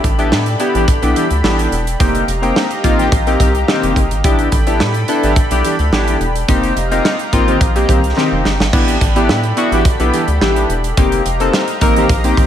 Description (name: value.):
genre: early-eighties boogie funk.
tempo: 107 BPM.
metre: 4/4.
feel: straight.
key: unclear.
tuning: A4 = 440 Hz.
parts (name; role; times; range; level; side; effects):
chorused pulse-width pad; sustained chords; 0.0-12.5 s; G4 to B5; -23 LUFS; right 1 dB; none.
rubbery square bass; bass; 0.0-12.5 s; E1 to A2; -17 LUFS; equal; none.
modern studio drum kit; drums; 0.0-12.5 s; crash cymbal, hi-hat, kick drum, snare drum; -17 LUFS; right 1 dB; none.
chorused polysynth; accompaniment; 0.2-12.5 s; Bb3 to Bb4; -17 LUFS; left 2 dB; none.
analog synth brass; second line; 0.7-12.5 s; Eb3 to G4; -22 LUFS; equal; chorus, ping-pong delay.
room: moderate plate reverb, RT60 1.9 s.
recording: dreamy mix soaked in reverb.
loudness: -12 LUFS.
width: side -10 dB against mid.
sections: 0.0-8.7 A section; 8.7-12.5 A section.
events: drum fill 8.2-8.7.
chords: 0.0 A9sus4; 2.0 F9sus4; 4.2 A9sus4; 6.5 F9sus4; 8.7 A9sus4; 11.0 F9sus4.